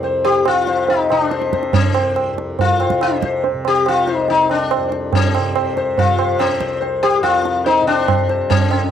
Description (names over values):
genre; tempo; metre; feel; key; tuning
indian classical, Hindustani; 142 BPM; 4/4; straight; C raga bageshri; A4 = 442 Hz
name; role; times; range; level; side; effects
sitar; melody; 0.0-8.9 s; C4 to C5; -16 LUFS; left 5 dB; none
tanpura; drone; 0.0-8.9 s; C2 to C3; -26 LUFS; equal; cassette tape
tabla; percussion; 0.0-8.9 s; none; -18 LUFS; right 6 dB; none
room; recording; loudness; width
light reverb; home recording on cassette; -14 LUFS; side -9 dB against mid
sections
0.0-8.5 A section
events
none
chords
none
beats
| 0.04 0.46 0.89 1.32 | 1.74 2.17 2.59 3.02 | 3.44 3.87 4.29 4.71 | 5.13 5.56 5.98 6.40 | 6.82 7.25 7.67 8.09 | 8.51